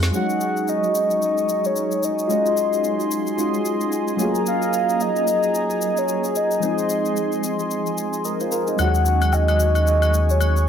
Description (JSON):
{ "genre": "amapiano", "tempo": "111 BPM", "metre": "4/4", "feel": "swing 58% on 16ths", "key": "Eb dorian", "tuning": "A4 = 440 Hz", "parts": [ { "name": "soft electric-piano-like synth keys", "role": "accompaniment", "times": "0.0-10.7 s", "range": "F3 to Eb5", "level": "-24 LUFS", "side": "equal", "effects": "chorus, phaser" }, { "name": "warm analog pad", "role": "sustained chords", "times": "0.0-10.7 s", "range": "Eb4 to Db6", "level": "-27 LUFS", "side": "right 2 dB", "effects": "chorus" }, { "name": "electronic shaker and snare drum", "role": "drums", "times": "0.0-10.7 s", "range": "none", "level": "-31 LUFS", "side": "left 5 dB", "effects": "none" }, { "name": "soft octave-layered synth lead", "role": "melody", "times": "0.1-10.7 s", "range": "Db5 to Gb5", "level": "-22 LUFS", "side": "left 1 dB", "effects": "chorus, phaser, tape echo" }, { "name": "sub bass with octave", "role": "bass", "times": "8.8-10.7 s", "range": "Eb2", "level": "-18 LUFS", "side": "equal", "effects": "none" }, { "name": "agogo bells and woodblock", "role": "percussion", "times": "8.8-10.6 s", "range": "none", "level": "-28 LUFS", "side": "left 7 dB", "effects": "none" } ], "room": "light reverb, digital ambience", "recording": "none", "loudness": "-18 LUFS", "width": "side -8 dB against mid", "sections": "0.1-10.7 A section", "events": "none", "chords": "0.1 Ebm11; 4.2 Gbmaj9; 6.6 Fm7; 8.8 Ebm11" }